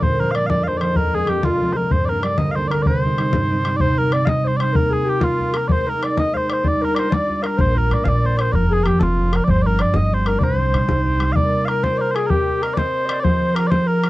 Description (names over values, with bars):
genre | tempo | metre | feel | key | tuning
celtic folk, Celtic jig | 127 BPM (dotted quarters) | 6/8 | straight | C minor | A4 = 440 Hz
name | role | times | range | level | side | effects
mellow small bagpipes | melody | 0.0-14.1 s | F4 to F5 | -22 LUFS | right 1 dB | none
bright reedy wooden flute | second line | 0.0-14.1 s | F4 to Eb5 | -24 LUFS | left 3 dB | none
concert harp | accompaniment | 0.0-14.1 s | C2 to Eb5 | -21 LUFS | right 1 dB | none
bodhran | percussion | 0.0-14.1 s | none | -22 LUFS | left 1 dB | none
upright bass | bass | 7.6-11.3 s | F1 to C3 | -19 LUFS | equal | none
room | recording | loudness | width
little or no reverb | dry, close 1970s-style studio recording | -16 LUFS | side -18 dB against mid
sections
0.0-3.8 A section; 3.8-11.4 A section; 11.4-14.1 B section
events
none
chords
0.0 Bb; 1.0 Fm; 1.9 Gm; 2.9 Cm; 4.8 N.C.; 5.7 Ab5; 6.6 Gm7; 7.6 Bb; 8.5 F5; 9.5 G5; 10.4 Cm; 11.4 Bb; 13.2 Fm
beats
| 0.03 0.50 | 0.97 1.45 | 1.92 2.39 | 2.87 3.34 | 3.81 4.28 | 4.75 5.23 | 5.70 6.17 | 6.64 7.11 | 7.58 8.06 | 8.53 9.00 | 9.47 9.94 | 10.42 10.89 | 11.36 11.83 | 12.30 12.77 | 13.24 13.71